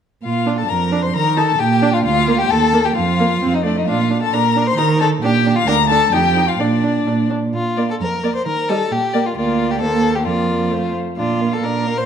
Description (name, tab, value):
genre	quick classical-period movement for string quartet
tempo	132 BPM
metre	2/4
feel	straight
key	Bb major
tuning	A4 = 440 Hz
part	rich violin	melody	0.2-12.1 s	C5 to C6	-21 LUFS	left 10 dB	none
part	rich violin	second line	0.2-12.1 s	D4 to C5	-20 LUFS	left 2 dB	none
part	rich cello	bass	0.2-12.0 s	D2 to Eb3	-19 LUFS	right 4 dB	none
part	rich viola	accompaniment	0.5-12.1 s	G3 to Eb4	-22 LUFS	right 4 dB	none
room	wet recital hall reverb, RT60 1.4 s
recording	dark, warm production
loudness	-14 LUFS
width	side -8 dB against mid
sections	0.2-7.5 A section; 7.5-12.1 A section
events	none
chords	0.2 Bb; 1.1 Eb5; 1.6 Bb; 2.0 Bb/D; 2.5 Gmadd9; 3.0 Bb5/F; 3.4 F; 3.9 Bb; 4.8 Eb5; 5.2 Bb; 5.7 Bb/D; 6.1 Ebadd9/F; 6.6 Bb; 8.5 Eb; 8.9 Bb; 9.4 Bb/D; 9.8 Cm7/Eb; 10.3 Bb/F; 10.7 F; 11.2 Bb